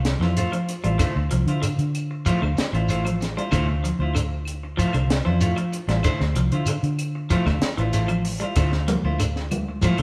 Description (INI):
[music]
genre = afrobeat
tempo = 95 BPM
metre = 4/4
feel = straight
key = D minor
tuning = A4 = 440 Hz
[part]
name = semi-hollow electric guitar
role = arpeggios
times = 0.0-10.0 s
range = D3 to G3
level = -30 LUFS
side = equal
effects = spring reverb
[part]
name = fingered electric bass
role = bass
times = 0.0-10.0 s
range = A1 to D3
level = -26 LUFS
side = equal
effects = none
[part]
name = compact cocktail drum kit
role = drums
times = 0.0-10.0 s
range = hi-hat, kick drum, snare drum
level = -30 LUFS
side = equal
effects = none
[part]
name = clean electric guitar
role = stabs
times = 0.1-10.0 s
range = A3 to C5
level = -32 LUFS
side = equal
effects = spring reverb
[part]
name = shekere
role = percussion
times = 0.1-10.0 s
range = none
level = -31 LUFS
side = equal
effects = none
[part]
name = claves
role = percussion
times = 0.5-10.0 s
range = none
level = -41 LUFS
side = equal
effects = none
[part]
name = congas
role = percussion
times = 8.9-10.0 s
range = none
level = -29 LUFS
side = equal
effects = none
[sound]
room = moderate stone room reverb, RT60 1.0 s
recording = band playing live in one room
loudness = -23 LUFS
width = mono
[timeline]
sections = 0.0-10.0 A section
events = none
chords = 0.0 Dm9